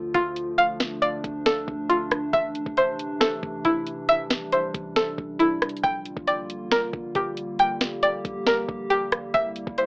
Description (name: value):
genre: hip hop, trap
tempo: 137 BPM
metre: 4/4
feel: half-time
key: D minor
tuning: A4 = 440 Hz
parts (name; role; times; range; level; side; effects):
- warbly tape-like pad; sustained chords; 0.0-9.9 s; C3 to G4; -32 LUFS; equal; chorus, built-in reverb
- string-like resonator pluck; arpeggios; 0.0-9.9 s; E4 to G5; -21 LUFS; equal; chorus, tape echo
- long sustained 808-style bass; bass; 0.0-9.9 s; A1 to D2; -43 LUFS; equal; none
- trap drum kit; drums; 0.1-9.9 s; hi-hat, kick drum, rim click, snare drum; -26 LUFS; equal; none
room: moderate studio reverb, RT60 0.5 s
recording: dry, gritty hardware recording, AM radio sound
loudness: -22 LUFS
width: side -29 dB against mid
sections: 0.0-9.9 A section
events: none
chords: 0.0 Dm; 2.3 Am; 5.8 Bb6; 9.3 C7